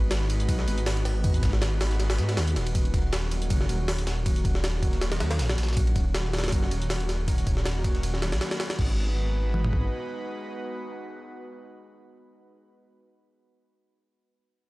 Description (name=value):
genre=drum and bass, jungle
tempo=159 BPM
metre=4/4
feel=swing 54% on 16ths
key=G# minor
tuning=A4 = 440 Hz
part: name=airy breathy pad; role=sustained chords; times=0.0-12.5 s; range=D#3 to B4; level=-34 LUFS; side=equal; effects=chorus
part: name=dark detuned saw bass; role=bass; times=0.0-9.9 s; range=D#1 to G#2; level=-26 LUFS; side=equal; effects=none
part: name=breakbeat sampler-style drum kit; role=drums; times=0.1-8.8 s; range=hi-hat, snare drum, tambourine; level=-40 LUFS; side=right 1 dB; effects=high-pass filter on perc, high-pass filter on snare, high-pass filter on hats
part: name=jungle sampler-style drum kit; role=drums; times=0.1-9.8 s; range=crash cymbal, hi-hat, kick drum, ride cymbal, snare drum, toms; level=-27 LUFS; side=equal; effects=none
room=little or no reverb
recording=dry, gritty hardware recording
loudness=-24 LUFS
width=side -21 dB against mid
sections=0.0-8.8 A section; 8.8-11.8 B section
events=none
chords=0.0 G#m7; 2.8 D#m7; 8.8 G#m7